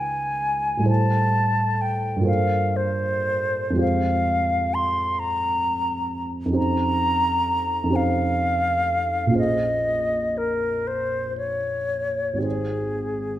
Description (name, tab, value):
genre	classical, impressionist duo for flute and grand piano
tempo	36-44 BPM (dotted quarters)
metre	6/8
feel	rubato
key	unclear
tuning	A4 = 439 Hz
part	mellow silver concert flute	melody	0.0-13.4 s	Ab4 to C6	-23 LUFS	left 1 dB	none
part	dark baby grand piano	accompaniment	0.0-13.4 s	Ab1 to Eb5	-24 LUFS	right 1 dB	none
room	wet recital hall reverb, RT60 1.5 s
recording	none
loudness	-20 LUFS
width	side -13 dB against mid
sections	0.0-13.4 A section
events	none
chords	0.0 Dbsus2; 0.9 Am7; 2.3 Gm11; 3.8 Fmadd9; 6.6 Eb13/F; 9.4 Bbm11; 12.4 Abmaj7